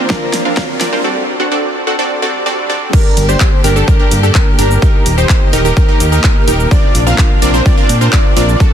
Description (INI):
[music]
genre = EDM, festival progressive house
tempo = 127 BPM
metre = 4/4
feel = straight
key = G minor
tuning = A4 = 440 Hz
[part]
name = fingerpicked steel-string acoustic guitar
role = accompaniment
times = 0.0-1.0 s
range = C4 to Bb4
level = -25 LUFS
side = right 1 dB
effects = none
[part]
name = clear symphonic string section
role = sustained chords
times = 0.0-8.7 s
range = C3 to C5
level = -23 LUFS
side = left 1 dB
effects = sidechain pumping
[part]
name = supersaw stab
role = riff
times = 0.0-8.7 s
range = C4 to F#5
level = -15 LUFS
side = right 1 dB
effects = sidechain pumping, dub echo
[part]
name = riser and swell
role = sound effects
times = 0.0-2.9 s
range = none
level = -26 LUFS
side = equal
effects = none
[part]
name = big-room dance drum kit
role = drums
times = 0.1-8.7 s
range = crash cymbal, handclaps, hi-hat, shaker, snare drum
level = -20 LUFS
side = equal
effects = overdrive, studio reverb
[part]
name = electronic kick drum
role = drums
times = 0.1-8.7 s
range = none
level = -10 LUFS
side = equal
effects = overdrive, studio reverb
[part]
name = wide unison lead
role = arpeggios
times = 2.9-8.7 s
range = A4 to F5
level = -19 LUFS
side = equal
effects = sidechain pumping, dub echo
[part]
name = fat analog bass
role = bass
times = 3.2-8.6 s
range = Eb1 to Bb2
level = -13 LUFS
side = equal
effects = sidechain pumping
[sound]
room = little or no reverb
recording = dense, heavily limited modern master, high-pass filter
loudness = -9 LUFS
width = side -9 dB against mid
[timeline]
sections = 0.0-2.9 A section; 2.9-8.7 B section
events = build-up 0.0-2.9; drum fill 0.0-1.0; riser 0.0-1.0; swell 2.0-2.9; drop 2.9-8.7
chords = 0.0 Bbadd9; 1.0 D; 2.9 Gm; 4.8 Eb; 6.7 Bbadd9